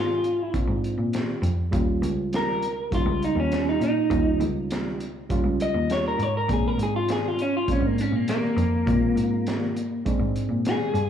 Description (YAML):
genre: straight-eighth soul blues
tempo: 101 BPM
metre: 4/4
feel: straight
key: unclear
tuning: A4 = 440 Hz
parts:
  - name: electric guitar through a small old amp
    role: melody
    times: 0.0-11.1 s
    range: Bb3 to Eb5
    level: -25 LUFS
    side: equal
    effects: slapback echo
  - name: mellow reed electric piano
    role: accompaniment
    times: 0.0-11.0 s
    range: G3 to Ab4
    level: -30 LUFS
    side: right 5 dB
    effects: slapback echo
  - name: warm cello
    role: bass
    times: 0.0-11.1 s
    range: Db2 to Bb2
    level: -27 LUFS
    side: left 1 dB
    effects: none
  - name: crunchy breakbeat drum kit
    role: drums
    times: 0.2-11.1 s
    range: hi-hat, kick drum, snare drum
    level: -29 LUFS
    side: equal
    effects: none
room: little or no reverb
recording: live gig heard through the venue's PA, club reverb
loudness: -22 LUFS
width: side -8 dB against mid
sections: 0.0-11.1 A section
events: clean electric guitar solo 0.0-11.1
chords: 0.0 Bb7; 1.7 Eb7; 6.5 Bb7